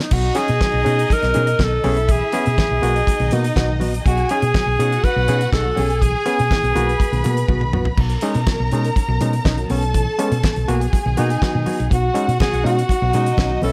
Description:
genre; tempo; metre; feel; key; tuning
disco; 122 BPM; 4/4; straight; B major; A4 = 436 Hz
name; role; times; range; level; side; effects
breathy alto saxophone; melody; 0.0-7.7, 11.2-13.7 s; D#4 to B4; -23 LUFS; equal; none
damped 70s drum kit; drums; 0.0-13.7 s; crash cymbal, hi-hat, kick drum, snare drum, toms; -23 LUFS; equal; none
warm symphonic string section; second line; 0.1-13.7 s; D#4 to B5; -29 LUFS; equal; none
overdriven reed electric piano; accompaniment; 0.1-13.7 s; G#2 to G#4; -27 LUFS; equal; none
hollow-body short-scale fingered electric bass; bass; 0.1-13.7 s; A#1 to B2; -23 LUFS; equal; none
congas; percussion; 0.4-13.7 s; none; -32 LUFS; equal; none
room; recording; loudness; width
light reverb, small room ambience; none; -18 LUFS; mono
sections
0.1-13.7 A section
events
drum fill 7.5-8.0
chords
0.1 B69; 1.8 Amaj9/B; 2.8 G#m7/B; 4.1 B69; 5.8 Amaj9/B; 6.8 G#m7/B; 8.0 B69; 9.7 Amaj9/B; 10.7 G#m7/B; 11.9 B69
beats
| 0.12 0.61 1.10 1.59 | 2.09 2.58 3.07 3.56 | 4.05 4.54 5.04 5.53 | 6.02 6.51 7.00 7.49 | 7.98 8.47 8.96 9.46 | 9.95 10.44 10.93 11.42 | 11.91 12.40 12.89 13.38

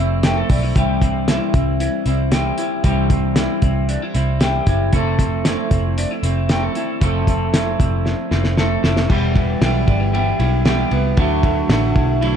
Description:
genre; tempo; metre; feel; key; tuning
jangly indie pop; 115 BPM; 4/4; straight; unclear; A4 = 445 Hz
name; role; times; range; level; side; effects
clean electric guitar; accompaniment; 0.0-12.4 s; C3 to E4; -22 LUFS; right 5 dB; none
electric guitar at the edge of break-up; arpeggios; 0.0-12.4 s; F3 to A4; -22 LUFS; left 4 dB; lush chorus, tape echo
vintage muted picked electric bass; bass; 0.0-12.4 s; E1 to D2; -20 LUFS; equal; none
cloth-damped thuddy drum kit; drums; 0.2-12.3 s; crash cymbal, hi-hat, kick drum, ride cymbal, snare drum; -19 LUFS; equal; none
room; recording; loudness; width
light reverb; dark, warm production; -15 LUFS; side -8 dB against mid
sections
0.0-9.1 A section; 9.1-12.4 B section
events
drum fill 8.1-9.1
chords
0.0 Fmaj7; 0.8 C; 4.9 Fmaj7; 9.1 Em; 11.2 Dadd9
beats
0.24 | 0.76 1.28 1.80 2.32 | 2.85 3.37 3.89 4.41 | 4.93 5.45 5.97 6.49 | 7.01 7.54 8.06 8.58 | 9.10 9.62 10.14 10.66 | 11.18 11.70 12.22

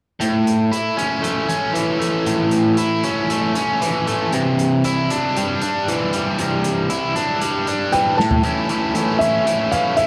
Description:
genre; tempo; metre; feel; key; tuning
indie rock; 117 BPM; 4/4; straight; unclear; A4 = 442 Hz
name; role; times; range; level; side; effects
biting overdriven guitar; riff; 0.2-10.1 s; A2 to E4; -20 LUFS; equal; none
loose indie drum kit; drums; 0.2-10.1 s; hi-hat, snare drum, toms; -30 LUFS; equal; none
clear upright piano; melody; 7.9-10.1 s; E5 to A5; -21 LUFS; equal; none
room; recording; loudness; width
light reverb; dark, warm production; -19 LUFS; mono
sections
0.2-8.4 A section; 8.4-10.1 B section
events
drum fill 8.2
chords
0.2 A; 4.3 Cadd9; 8.2 N.C.; 8.4 A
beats
| 0.22 0.73 1.25 1.77 | 2.28 2.80 3.31 3.83 | 4.34 4.86 5.37 5.88 | 6.40 6.91 7.42 7.94 | 8.45 8.96 9.47 9.98

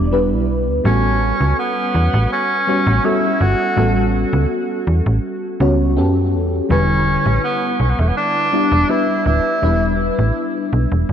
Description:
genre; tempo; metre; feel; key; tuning
vaporwave; 82 BPM; 4/4; straight; E dorian; A4 = 439 Hz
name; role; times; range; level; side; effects
mellow FM electric piano; accompaniment; 0.0-11.1 s; D3 to D5; -19 LUFS; left 1 dB; phaser, ensemble chorus, ping-pong delay
slap-like FM bass; bass; 0.0-11.1 s; D1 to F#2; -17 LUFS; equal; none
breathy tenor saxophone; melody; 0.9-10.0 s; A3 to F#4; -19 LUFS; right 1 dB; tape echo
room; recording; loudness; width
moderate huge ambient reverb, RT60 4.3 s; dreamy mix soaked in reverb, cassette tape; -14 LUFS; side -9 dB against mid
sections
0.0-11.1 A section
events
none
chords
0.0 Em7; 0.8 A13; 6.7 Em7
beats
0.12 | 0.85 1.58 2.31 3.04 | 3.78 4.51 5.24 5.97 | 6.70 7.43 8.17 8.90 | 9.63 10.36 11.09

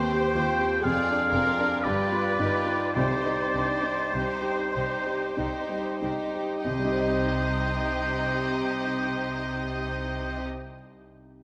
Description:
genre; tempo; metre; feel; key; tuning
classical, romantic movement for piano and orchestra; 46-63 BPM; 3/4; rubato; C minor; A4 = 440 Hz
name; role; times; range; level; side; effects
rich chamber violin section; melody; 0.0-10.5 s; B4 to Eb5; -42 LUFS; equal; none
warm baby grand piano; melody; 0.0-11.4 s; C2 to Eb5; -32 LUFS; equal; none
clear oboe; second line; 0.0-10.5 s; C5 to G5; -32 LUFS; equal; none
warm chamber violin section; second line; 0.0-10.5 s; C4 to Ab4; -37 LUFS; equal; none
rich studio viola section; accompaniment; 0.0-10.5 s; Eb4 to C5; -37 LUFS; equal; none
clear symphonic cello section; bass; 0.3-10.5 s; Eb2 to C3; -37 LUFS; equal; none
rich chamber double bass section; bass; 0.4-10.5 s; F1 to Eb2; -38 LUFS; equal; none
timpani; percussion; 3.0-10.5 s; C3; -40 LUFS; equal; none
room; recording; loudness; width
moderate scoring stage reverb, RT60 1.9 s; none; -27 LUFS; mono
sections
0.0-6.6 A section; 6.6-10.4 B section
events
slowing down 0.0-6.6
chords
0.0 Cm/Eb; 0.8 Ddim/F; 1.8 G7; 3.0 Cm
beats
0.83 1.83 | 2.95 4.14 5.37 | 6.65 7.88 9.17

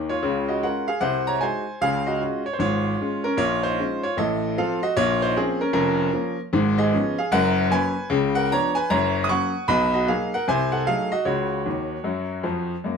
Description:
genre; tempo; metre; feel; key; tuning
jazz, stride piano; 152 BPM; 4/4; swing 64% on 8ths; Db major, F# major from 6.5 s; A4 = 440 Hz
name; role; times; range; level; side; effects
bright grand piano; solo; 0.0-13.0 s; F1 to D#6; -20 LUFS; equal; none
room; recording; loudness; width
moderate studio reverb, RT60 0.7 s; none; -20 LUFS; side -6 dB against mid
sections
0.2-12.8 A section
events
grand piano fill 0.0, 11.7-12.8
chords
0.2 Db; 1.0 Ab7/C; 1.8 Db; 3.4 Bbm7; 4.2 F7/A; 5.0 Bbm; 6.5 C#7/G#; 7.3 F#; 8.1 C#7b9; 8.9 F#; 9.7 Bmaj7; 10.5 Cdim7; 11.3 F#5/C#; 12.1 C#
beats
| 0.24 0.63 1.02 1.42 | 1.81 2.21 2.60 3.00 | 3.39 3.78 4.18 4.57 | 4.96 5.36 5.75 6.15 | 6.54 6.93 7.33 7.72 | 8.11 8.51 8.90 9.29 | 9.69 10.08 10.47 10.87 | 11.26 11.66 12.05 12.44 | 12.84

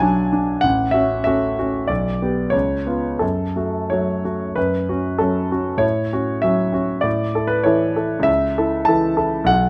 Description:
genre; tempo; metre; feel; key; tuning
classical, romantic character piece for solo piano; 85-100 BPM; 2/4; rubato; F# minor; A4 = 440 Hz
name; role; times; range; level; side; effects
clear concert grand piano; solo; 0.0-9.7 s; A1 to A5; -20 LUFS; equal; none
room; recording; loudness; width
light reverb; close, detailed microphones, faint mains hum; -20 LUFS; mono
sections
0.0-4.6 A section; 4.6-9.7 A section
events
none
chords
0.0 Bm; 0.6 F#m/A; 1.9 G/B; 2.5 C#7; 3.2 F#m; 5.8 F#m/A; 7.1 A; 8.3 A/C#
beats
0.01 | 0.64 1.27 | 1.90 2.53 | 3.22 3.90 | 4.56 5.19 | 5.83 6.44 | 7.05 7.66 | 8.28 8.88 | 9.49

